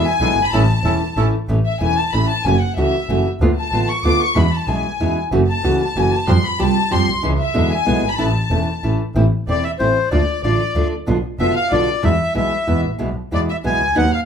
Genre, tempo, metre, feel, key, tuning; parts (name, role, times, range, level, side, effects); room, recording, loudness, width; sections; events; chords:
tango; 188 BPM; 3/4; rubato; A major; A4 = 441 Hz
warm studio violin section; second line; 0.0-14.2 s; C5 to D6; -22 LUFS; left 3 dB
nylon-string guitar; accompaniment; 0.0-14.1 s; B2 to B4; -20 LUFS; right 1 dB
bandoneon; stabs; 0.0-1.3 s; C#4 to A4; -26 LUFS; right 6 dB
clear double bass; bass; 0.2-14.1 s; E1 to F2; -19 LUFS; right 1 dB
bandoneon; melody; 9.5-14.2 s; C5 to G#5; -20 LUFS; left 2 dB
moderate large studio reverb, RT60 0.9 s; band playing live in one room; -15 LUFS; side -7 dB against mid
0.0-1.5 A section; 1.5-9.2 A section; 9.2-14.3 B section
violin section solo 0.0-1.5, 1.5-9.2
0.0 E7; 0.5 A; 2.5 F#m7; 3.4 Dm6; 4.4 E6; 5.3 F#m7; 6.3 Fadd9; 7.2 C#m; 7.6 E7; 8.2 A; 9.2 Am; 10.1 Dm; 11.1 Bdim; 12.0 E